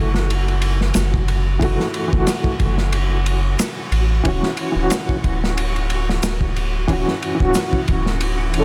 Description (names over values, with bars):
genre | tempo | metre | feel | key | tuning
trip hop | 91 BPM | 4/4 | swing 55% on 16ths | F# minor | A4 = 440 Hz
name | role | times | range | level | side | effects
dark upright piano | accompaniment | 0.0-8.6 s | E3 to A4 | -25 LUFS | equal | tremolo, vintage 12-bit sampler grit, tape echo
soft dub sub bass | bass | 0.0-8.6 s | D1 to A1 | -22 LUFS | equal | none
flickering grainy texture | texture | 0.0-8.6 s | F#4 | -35 LUFS | equal | none
crunchy breakbeat drum kit | drums | 0.1-8.6 s | kick drum, ride cymbal, snare drum | -24 LUFS | equal | none
egg shaker | percussion | 1.0-7.7 s | none | -34 LUFS | equal | none
room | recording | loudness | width
light reverb | none | -19 LUFS | mono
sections
0.0-8.6 A section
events
none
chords
0.0 F#m7; 4.2 Dmaj9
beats
0.29 0.95 | 1.61 2.27 2.93 3.59 | 4.25 4.91 5.56 6.22 | 6.88 7.54 8.20